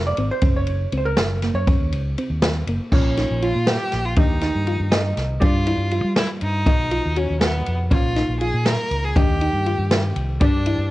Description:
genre	progressive instrumental, band music in an uneven meter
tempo	240 BPM (eighths)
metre	5/8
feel	straight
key	unclear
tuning	A4 = 440 Hz
part	vintage hollow-body jazz guitar	accompaniment	0.0-10.9 s	Bb2 to Eb5	-29 LUFS	right 2 dB	cassette tape
part	soft round pluck	arpeggios	0.0-10.9 s	Bb3 to F#4	-27 LUFS	left 1 dB	chorus, cassette tape
part	fingered electric bass	bass	0.0-10.9 s	F1 to G3	-23 LUFS	equal	none
part	open jazz drum kit	drums	0.2-10.8 s	crash cymbal, kick drum, ride cymbal, snare drum	-21 LUFS	equal	cassette tape
part	clear violin	melody	2.9-10.9 s	B3 to Bb4	-26 LUFS	equal	none
room	light reverb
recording	home recording on cassette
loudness	-18 LUFS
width	side -17 dB against mid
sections	0.0-2.9 A section; 2.9-10.9 B section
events	hollow-body jazz guitar solo 0.0-2.9; hollow-body jazz guitar fill 4.7-5.4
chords	0.4 Gb; 2.9 Bbm; 4.2 Eb; 5.4 G; 6.7 B; 7.9 Bbm; 9.2 Eb

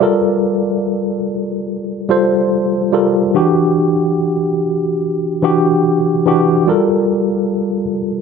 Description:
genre	R&B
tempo	72 BPM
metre	4/4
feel	swing 58% on 16ths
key	unclear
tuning	A4 = 440 Hz
part	tine electric piano	solo	0.0-8.2 s	E3 to D5	-13 LUFS	equal	overdrive, fast stereo tremolo
room	moderate lush hall reverb, RT60 2.3 s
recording	none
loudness	-13 LUFS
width	side -6 dB against mid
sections	0.0-8.2 A section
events	none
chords	0.0 Gm9; 3.4 Em9; 6.7 Gm9

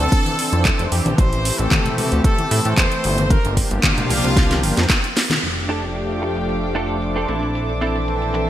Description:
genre	nu-disco, nu disco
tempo	113 BPM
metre	4/4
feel	straight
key	F major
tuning	A4 = 440 Hz
part	brilliant trumpet section	melody	0.0-4.9 s	F4 to C5	-24 LUFS	equal	digital delay
part	warm analog pad	accompaniment	0.0-8.5 s	E3 to A4	-23 LUFS	equal	chorus, cassette tape, sidechain pumping, digital delay
part	chorused synth bass	bass	0.0-8.5 s	F1 to A2	-22 LUFS	equal	none
part	house drum kit	drums	0.0-8.5 s	handclaps, hi-hat, snare drum	-22 LUFS	equal	low-pass filter on hats, studio reverb, low-pass filter on snare, gated reverb
part	electronic kick drum	drums	0.1-5.0 s	none	-18 LUFS	equal	studio reverb
part	congas	percussion	0.3-5.4 s	none	-26 LUFS	left 2 dB	none
part	warm studio violin section	sustained chords	5.4-8.5 s	A4 to D6	-29 LUFS	right 1 dB	sidechain pumping
part	direct-recorded clean electric guitar	riff	5.7-8.4 s	C4 to A4	-26 LUFS	right 2 dB	ensemble chorus, low-pass filter, digital delay
room	light reverb, small room reverb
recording	bright 1980s-style digital production, faint mains hum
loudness	-16 LUFS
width	side -12 dB against mid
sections	0.0-5.4 A section; 5.4-8.5 B section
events	drum fill 4.4-5.4; band accent 5.3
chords	0.0 Bbmaj9#11 (rootless); 1.2 Am7; 3.3 Gm7; 5.4 F69; 7.3 Bbmaj9#11

